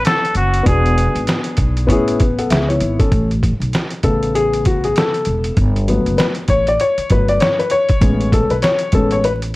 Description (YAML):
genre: hip hop, jazz-hop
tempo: 98 BPM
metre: 4/4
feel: swing 60% on 16ths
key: A major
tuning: A4 = 440 Hz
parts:
  - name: trumpet with straight mute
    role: melody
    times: 0.0-1.2 s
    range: F#4 to A4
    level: -19 LUFS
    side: equal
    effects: tape echo
  - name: dark concert grand piano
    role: accompaniment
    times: 0.0-9.3 s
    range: C#3 to G#5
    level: -17 LUFS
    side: left 2 dB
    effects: none
  - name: trip hop sampler-style drum kit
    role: drums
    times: 0.0-9.5 s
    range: hi-hat, kick drum, snare drum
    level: -18 LUFS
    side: equal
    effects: none
  - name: upright bass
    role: bass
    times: 0.4-9.6 s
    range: E1 to A2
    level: -19 LUFS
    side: equal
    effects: none
room: light reverb, small room ambience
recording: vinyl crackle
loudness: -13 LUFS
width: side -19 dB against mid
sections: 0.0-3.1 A section; 3.1-9.6 B section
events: grand piano solo 3.1-9.6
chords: 0.0 Amaj9; 0.7 E7; 1.9 Amaj9; 3.1 Aadd9; 5.6 Gmaj9; 8.0 Amaj9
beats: 0.06 | 0.67 1.28 1.89 2.50 | 3.12 3.73 4.34 4.95 | 5.57 6.18 6.79 7.40 | 8.01 8.63 9.24